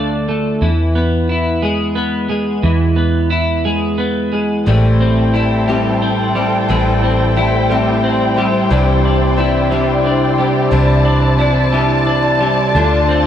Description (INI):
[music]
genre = pop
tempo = 59 BPM (dotted quarters)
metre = 6/8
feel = straight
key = A minor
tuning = A4 = 440 Hz
[part]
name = twelve-string electric guitar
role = accompaniment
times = 0.0-13.3 s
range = A2 to F4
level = -15 LUFS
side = right 1 dB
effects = double-tracked left and right
[part]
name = vintage muted fingered electric bass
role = bass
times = 0.0-13.3 s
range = A1 to E2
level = -19 LUFS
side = equal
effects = none
[part]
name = dark studio string section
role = sustained chords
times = 4.7-13.3 s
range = E4 to A5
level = -17 LUFS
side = left 1 dB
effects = none
[part]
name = picked steel-string acoustic guitar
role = arpeggios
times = 4.7-13.3 s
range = A2 to F4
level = -20 LUFS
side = left 4 dB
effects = none
[sound]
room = moderate echo chamber reverb, RT60 1.7 s, studio reverb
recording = worn, warbling old tape, cassette tape, warbly pitch drift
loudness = -12 LUFS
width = side -10 dB against mid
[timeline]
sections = 0.0-13.3 A section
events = none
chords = 0.0 Dm; 0.6 E; 4.7 Am7; 8.7 Cadd9; 12.7 Dm